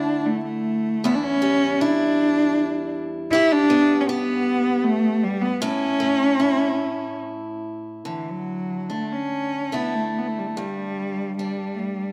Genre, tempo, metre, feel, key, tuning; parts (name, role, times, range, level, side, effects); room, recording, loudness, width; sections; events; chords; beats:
celtic folk, Celtic slow air; 70-80 BPM; 3/4; rubato; A4 = 440 Hz
rich cello; melody; 0.0-12.1 s; E3 to E4; -23 LUFS; equal
picked acoustic archtop guitar; accompaniment; 0.0-12.1 s; E2 to G4; -30 LUFS; equal
moderate scoring stage reverb, RT60 1.8 s; -22 LUFS; mono
0.0-8.0 A section; 8.0-12.1 B section
0.0 Dsus2; 1.0 Em; 3.3 G; 5.6 A; 8.0 Dsus2; 10.6 G5
0.24 | 1.03 1.80 2.57 | 3.32 4.08 4.84 | 5.61 6.39 7.21 | 8.05 8.90 9.73 | 10.56 11.38